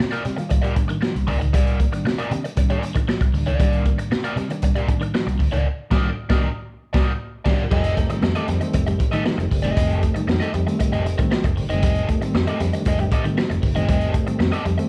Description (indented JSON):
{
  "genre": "funk",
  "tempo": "117 BPM",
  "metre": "4/4",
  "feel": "straight",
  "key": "unclear",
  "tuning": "A4 = 440 Hz",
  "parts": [
    { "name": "overdriven electric guitar", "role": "accompaniment", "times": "0.0-14.8 s", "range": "Eb4 to Eb5", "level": "-30 LUFS", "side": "equal", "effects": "wah" },
    { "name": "electric guitar at the edge of break-up", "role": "riff", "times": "0.0-14.8 s", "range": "Eb3 to Bb3", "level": "-34 LUFS", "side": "equal", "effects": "none" },
    { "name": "mellow reed electric piano", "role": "stabs", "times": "0.0-14.9 s", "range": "Eb3 to Eb5", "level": "-29 LUFS", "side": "equal", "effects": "fast tremolo" },
    { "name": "vintage muted fingered electric bass", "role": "bass", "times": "0.0-14.8 s", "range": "F1 to C3", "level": "-26 LUFS", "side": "equal", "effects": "none" },
    { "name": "crunchy breakbeat drum kit", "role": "drums", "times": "0.0-14.9 s", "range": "crash cymbal, hi-hat, kick drum, snare drum", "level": "-24 LUFS", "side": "equal", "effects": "none" },
    { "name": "percussive tonewheel organ", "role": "sustained chords", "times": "7.7-14.9 s", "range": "Eb3 to C4", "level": "-35 LUFS", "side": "equal", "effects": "overdrive, chorus vibrato, slow rotary speaker" }
  ],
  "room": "light reverb",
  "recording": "band playing live in one room",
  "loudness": "-21 LUFS",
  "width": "mono",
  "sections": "0.0-7.7 A section; 7.7-14.9 B section",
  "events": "band accent 5.7-7.7; reed electric piano fill 11.1-11.8",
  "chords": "0.0 Cm9; 7.7 F9"
}